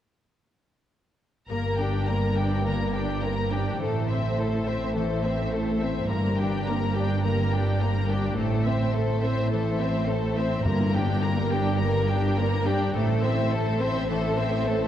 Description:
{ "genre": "cinematic, heroic adventure film score", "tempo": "105 BPM", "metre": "4/4", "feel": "straight", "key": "G dorian", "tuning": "A4 = 441 Hz", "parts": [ { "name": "warm symphonic violin section", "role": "melody", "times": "1.5-14.9 s", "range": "C5 to Bb5", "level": "-34 LUFS", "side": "left 4 dB", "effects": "none" }, { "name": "warm symphonic violin section", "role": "second line", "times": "1.5-14.9 s", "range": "G4 to C5", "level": "-31 LUFS", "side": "left 2 dB", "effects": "none" }, { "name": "warm symphonic viola section", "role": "accompaniment", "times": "1.5-14.9 s", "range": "A3 to D4", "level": "-31 LUFS", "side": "equal", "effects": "none" }, { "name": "concert harp", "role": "arpeggios", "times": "1.5-14.9 s", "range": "G2 to D4", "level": "-32 LUFS", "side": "left 5 dB", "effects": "none" }, { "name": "warm symphonic cello section", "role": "bass", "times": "1.5-14.9 s", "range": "G2 to A2", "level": "-29 LUFS", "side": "right 1 dB", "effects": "none" }, { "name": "warm symphonic double bass section", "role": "bass", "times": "1.5-14.9 s", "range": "G1 to A1", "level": "-28 LUFS", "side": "right 2 dB", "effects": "none" }, { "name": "timpani", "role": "percussion", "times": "10.7-11.5 s", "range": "G2", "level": "-30 LUFS", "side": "left 1 dB", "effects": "none" } ], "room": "wet concert hall reverb, RT60 2.6 s", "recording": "dark, warm production", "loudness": "-23 LUFS", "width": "side -10 dB against mid", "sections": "1.5-14.9 A section", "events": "build-up 1.5-14.9", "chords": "1.5 Gm; 3.8 Am; 6.1 Gm; 8.4 Am; 10.7 Gm; 12.9 Am" }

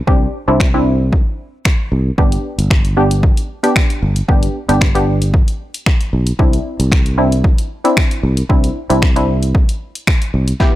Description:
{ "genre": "dance-pop", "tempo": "114 BPM", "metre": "4/4", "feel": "straight", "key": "unclear", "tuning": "A4 = 440 Hz", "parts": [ { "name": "wavetable chord stab", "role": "accompaniment", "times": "0.1-10.8 s", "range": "B3 to G4", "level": "-17 LUFS", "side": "equal", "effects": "sidechain pumping" }, { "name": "sustaining fretless electric bass", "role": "bass", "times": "0.1-10.5 s", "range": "G1 to C2", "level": "-16 LUFS", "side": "equal", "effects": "sidechain pumping" }, { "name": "punchy analog drum machine", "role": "drums", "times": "0.1-10.7 s", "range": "finger snaps, hi-hat, kick drum, snare drum", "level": "-14 LUFS", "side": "equal", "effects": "none" } ], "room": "little or no reverb", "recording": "dry, gritty hardware recording, transformer saturation", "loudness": "-12 LUFS", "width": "side -15 dB against mid", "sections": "0.0-10.6 A section", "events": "drum fill 10.6", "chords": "0.0 Cadd9; 2.2 G; 6.4 Cadd9" }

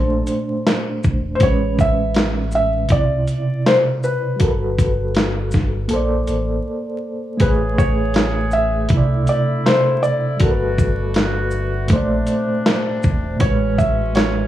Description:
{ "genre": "lo-fi hip hop", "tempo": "80 BPM", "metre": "4/4", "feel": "swing 61% on 16ths", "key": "unclear", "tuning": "A4 = 440 Hz", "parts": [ { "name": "felt-muted upright piano", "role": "melody", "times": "0.0-14.5 s", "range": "A4 to E5", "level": "-21 LUFS", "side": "equal", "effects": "none" }, { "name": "mellow reed electric piano", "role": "accompaniment", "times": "0.0-14.5 s", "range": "A2 to D5", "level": "-21 LUFS", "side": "right 2 dB", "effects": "medium tremolo, cassette tape" }, { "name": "sub bass with octave", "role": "bass", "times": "0.0-14.5 s", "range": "E1 to C2", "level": "-22 LUFS", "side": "equal", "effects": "none" }, { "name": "dusty soul sampler-style drum kit", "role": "drums", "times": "0.3-14.4 s", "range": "hi-hat, kick drum, shaker, snare drum", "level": "-18 LUFS", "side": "equal", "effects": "none" }, { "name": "warm woodwind section", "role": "sustained chords", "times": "7.4-14.5 s", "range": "B2 to G#4", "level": "-26 LUFS", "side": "left 2 dB", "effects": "none" } ], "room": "light reverb", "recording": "vinyl crackle, small room ambience", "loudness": "-16 LUFS", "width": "side -13 dB against mid", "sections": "0.0-14.5 A section", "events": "break 6.7-7.4", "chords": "0.0 Bbmaj9; 1.4 Amaj9; 2.9 Cmaj9; 4.4 Gmaj9; 5.9 Bbmaj9; 7.4 Amaj9; 8.9 Cmaj9; 10.4 Gmaj9; 11.9 Bbmaj9; 13.4 Amaj9" }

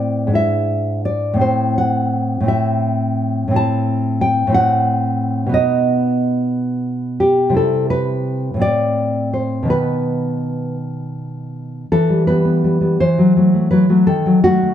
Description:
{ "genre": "romantic piece for solo classical guitar", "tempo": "50-61 BPM (dotted quarters)", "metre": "6/8", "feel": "rubato", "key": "unclear", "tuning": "A4 = 441 Hz", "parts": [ { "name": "nylon-string guitar", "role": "solo", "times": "0.0-14.7 s", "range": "G#2 to A5", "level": "-15 LUFS", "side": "equal", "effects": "none" } ], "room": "moderate recital hall reverb, RT60 1.6 s", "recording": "dark, warm production", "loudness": "-14 LUFS", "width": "side -10 dB against mid", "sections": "0.0-11.9 A section; 11.9-14.7 B section", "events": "none", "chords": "0.4 E7/G#; 1.4 Am; 5.5 B; 7.6 C; 8.6 F#dim/A (rootless); 9.7 B; 11.9 Em; 13.0 F#m7b5/E; 14.1 B7/D# (rootless)" }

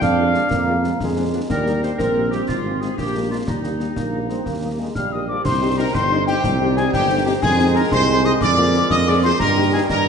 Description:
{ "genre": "military-style march for wind band", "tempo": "121 BPM (dotted quarters)", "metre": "6/8", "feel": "straight", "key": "Eb major", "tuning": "A4 = 440 Hz", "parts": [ { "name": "warm woodwind section", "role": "second line", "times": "0.0-10.1 s", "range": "Eb4 to F5", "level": "-26 LUFS", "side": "left 2 dB", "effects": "none" }, { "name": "warm trombone section", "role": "sustained chords", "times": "0.0-10.1 s", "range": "Eb3 to D4", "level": "-26 LUFS", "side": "right 3 dB", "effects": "none" }, { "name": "mellow tuba", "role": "bass", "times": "0.0-10.1 s", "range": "G1 to G2", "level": "-21 LUFS", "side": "right 2 dB", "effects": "none" }, { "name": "concert snare drum, concert bass drum and clash cymbals", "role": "drums", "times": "0.0-10.0 s", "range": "none", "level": "-27 LUFS", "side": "left 1 dB", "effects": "none" }, { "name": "warm trumpet section", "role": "melody", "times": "0.2-10.1 s", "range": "D4 to F5", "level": "-24 LUFS", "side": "equal", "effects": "none" }, { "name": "mellow French horn section", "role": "accompaniment", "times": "0.2-10.1 s", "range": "Eb3 to Ab4", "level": "-26 LUFS", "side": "left 4 dB", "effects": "none" }, { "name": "mellow wooden piccolo", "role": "second line", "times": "5.0-10.1 s", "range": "G5 to F6", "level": "-21 LUFS", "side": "left 3 dB", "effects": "none" } ], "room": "wet scoring stage reverb, RT60 1.6 s", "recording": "nothing above 10.4 kHz", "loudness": "-16 LUFS", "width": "side -6 dB against mid", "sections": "0.0-5.5 A section; 5.5-10.1 B section", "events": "none", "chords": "0.0 Bb7/F; 1.5 Eb; 2.5 Fm/Ab; 3.0 Bb7; 3.5 Eb; 5.5 Cm; 7.4 Fm7; 8.4 Bb7/F; 9.4 Eb/G" }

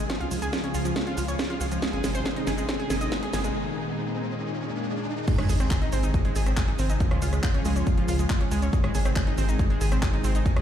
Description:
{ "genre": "uplifting trance", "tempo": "139 BPM", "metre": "4/4", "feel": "straight", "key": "Ab major", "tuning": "A4 = 440 Hz", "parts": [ { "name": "analog string pad", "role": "sustained chords", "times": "0.0-10.6 s", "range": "Bb2 to Ab4", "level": "-31 LUFS", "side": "left 1 dB", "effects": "ensemble chorus, sidechain pumping" }, { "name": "analog pluck", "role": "arpeggios", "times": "0.0-10.6 s", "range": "F3 to Eb5", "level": "-32 LUFS", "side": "right 1 dB", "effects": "chorus, sidechain pumping, tape echo" }, { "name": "tight sequencer bass", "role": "bass", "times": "0.0-10.6 s", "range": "Ab1 to Eb2", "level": "-26 LUFS", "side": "equal", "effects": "sidechain pumping" }, { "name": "riser and sub drop", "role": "sound effects", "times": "1.5-7.0 s", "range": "none", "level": "-34 LUFS", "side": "equal", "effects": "none" }, { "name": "electronic kick drum", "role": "drums", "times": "0.1-10.5 s", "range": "none", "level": "-25 LUFS", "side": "equal", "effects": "high-pass filter on kick, high-pass filter on room" }, { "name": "house drum kit", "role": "drums", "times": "0.1-10.6 s", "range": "crash cymbal, handclaps, hi-hat, rim click, shaker, snare drum", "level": "-32 LUFS", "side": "right 1 dB", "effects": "sidechain pumping on hats, sidechain pumping on perc, sidechain pumping on cymbals" } ], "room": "light reverb", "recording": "played on a big sound system in a bare room, large studio reverb", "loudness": "-23 LUFS", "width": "side -10 dB against mid", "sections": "0.0-5.3 A section; 5.3-10.6 B section", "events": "build-up 0.0-5.3; drum fill 0.0-3.6; riser 1.5-5.3; break 3.6-5.3; drop 5.3-10.6; impact 5.3-7.0", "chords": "0.1 Db; 1.8 Ab; 3.6 Ebsus4; 5.3 Ab; 7.0 Db; 8.7 Ab" }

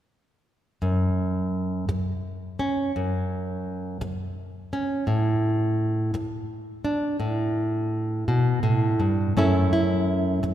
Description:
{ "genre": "folk, solo fingerstyle acoustic guitar", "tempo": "56 BPM (dotted quarters)", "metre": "6/8", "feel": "straight", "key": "unclear", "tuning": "A4 = 440 Hz", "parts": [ { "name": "nylon-string guitar", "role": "solo", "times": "0.8-10.5 s", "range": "F#2 to E4", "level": "-23 LUFS", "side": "equal", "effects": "none" } ], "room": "wet concert hall reverb, RT60 2.4 s", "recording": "recorded in a church or concert hall", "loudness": "-23 LUFS", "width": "side -11 dB against mid", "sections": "0.8-9.4 A section; 9.4-10.5 B section", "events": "none", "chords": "0.8 F#5; 5.1 N.C.; 9.4 F#m7" }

